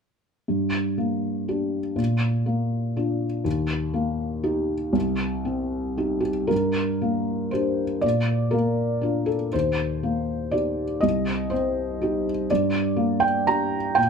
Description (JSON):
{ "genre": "neoclassical minimalist piano", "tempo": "120 BPM", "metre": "3/4", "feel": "rubato", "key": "G minor", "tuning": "A4 = 440 Hz", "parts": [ { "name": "felt-muted upright piano", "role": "solo", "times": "0.5-14.1 s", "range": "C2 to Bb5", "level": "-22 LUFS", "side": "equal", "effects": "none" } ], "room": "light reverb", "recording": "none", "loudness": "-22 LUFS", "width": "side -6 dB against mid", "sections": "0.5-6.5 A section; 6.5-14.1 B section", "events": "none", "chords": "0.5 Gm; 2.0 Bb; 3.5 Eb; 4.9 Cm; 6.5 Gm; 8.0 Bb; 9.5 Eb; 11.0 Cm; 12.5 Gm" }